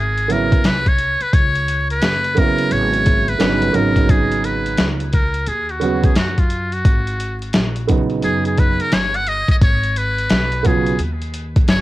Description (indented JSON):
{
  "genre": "hip hop, jazz-hop",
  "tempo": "87 BPM",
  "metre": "4/4",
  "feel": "swing 64% on 16ths",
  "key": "unclear",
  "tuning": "A4 = 441 Hz",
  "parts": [
    { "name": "trumpet with metal mute", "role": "melody", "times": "0.0-11.8 s", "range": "E#4 to F#5", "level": "-20 LUFS", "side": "equal", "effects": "cassette tape, plate reverb, tape echo" },
    { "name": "upright bass", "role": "bass", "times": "0.0-11.8 s", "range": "F#1 to F#2", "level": "-23 LUFS", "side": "equal", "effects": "none" },
    { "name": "boom bap sampler-style drum kit", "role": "drums", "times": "0.2-11.8 s", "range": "hi-hat, kick drum, snare drum", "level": "-16 LUFS", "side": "equal", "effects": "cassette tape" },
    { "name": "dark baby grand piano", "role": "accompaniment", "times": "0.3-10.9 s", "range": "C#3 to F#4", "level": "-19 LUFS", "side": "right 4 dB", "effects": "none" }
  ],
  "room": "moderate booth ambience, RT60 0.2 s",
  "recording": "home recording on cassette, vinyl crackle",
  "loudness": "-15 LUFS",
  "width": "side -16 dB against mid",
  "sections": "0.0-11.8 A section",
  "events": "muted trumpet solo 0.0-11.8",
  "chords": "0.0 C#m11; 3.7 G#m11"
}